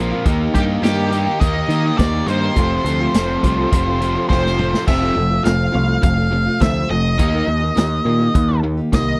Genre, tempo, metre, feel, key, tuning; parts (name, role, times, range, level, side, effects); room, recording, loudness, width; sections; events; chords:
classic rock; 104 BPM; 4/4; straight; A4 = 441 Hz
picked old ladder-braced acoustic guitar; accompaniment; 0.0-9.2 s; F2 to G4; -29 LUFS; equal
crunchy overdriven guitar; riff; 0.0-9.2 s; F2 to Eb4; -27 LUFS; equal
distorted electric guitar; riff; 0.0-9.2 s; F2 to G4; -25 LUFS; equal; distortion
growling picked electric bass; bass; 0.0-9.1 s; F1 to Eb3; -23 LUFS; equal; overdrive
vintage drum kit; drums; 0.3-9.1 s; crash cymbal, hi-hat, kick drum, snare drum, toms; -21 LUFS; equal
octave-fuzz lead guitar; melody; 0.5-9.2 s; G4 to F5; -24 LUFS; equal; wah, distortion, slapback echo
little or no reverb; dry, close 1970s-style studio recording; -17 LUFS; mono
0.0-4.9 A section; 4.9-9.2 B section
drum fill 4.3-4.9
0.3 Eb; 2.6 F; 7.2 Eb